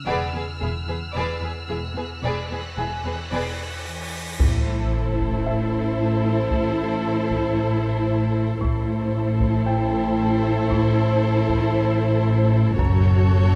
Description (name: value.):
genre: cinematic, suspense film score.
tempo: 57 BPM.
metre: 4/4.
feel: straight.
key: A dorian from 4.4 s.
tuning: A4 = 444 Hz.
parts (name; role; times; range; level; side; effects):
warm symphonic violin section; texture; 0.0-3.8, 12.8-13.6 s; C#6 to G6; -38 LUFS; equal; none.
warm symphonic violin section; melody; 0.1-13.6 s; G#4 to D5; -32 LUFS; equal; none.
warm studio violin section; second line; 0.1-13.6 s; E4 to B4; -33 LUFS; equal; none.
marimba with hard mallets; riff; 0.1-13.6 s; E2 to A3; -28 LUFS; equal; none.
dark symphonic double bass section; bass; 0.1-13.6 s; E1 to A1; -30 LUFS; equal; none.
warm symphonic cello section; bass; 0.1-13.6 s; E2 to A2; -29 LUFS; equal; none.
cymbal swell and sub drop; sound effects; 2.4-8.6 s; none; -33 LUFS; equal; none.
bright grand piano; texture; 0.1-12.8 s; E5 to G#5; -38 LUFS; equal; none.
warm symphonic viola section; accompaniment; 4.4-13.6 s; E4 to F#4; -29 LUFS; equal; none.
taiko ensemble; drums; 4.4-13.6 s; none; -29 LUFS; equal; none.
room: moderate scoring stage reverb, RT60 1.8 s.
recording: close, detailed microphones.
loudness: -22 LUFS.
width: mono.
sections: 0.0-4.4 A section; 4.4-13.6 B section.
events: cymbal swell 2.4-4.4; impact 4.4-8.6.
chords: 0.1 E7; 4.4 Am; 12.8 F#m.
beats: | 0.07 1.15 2.23 3.32 | 4.40 5.46 6.51 7.57 | 8.62 9.67 10.72 11.75 | 12.79.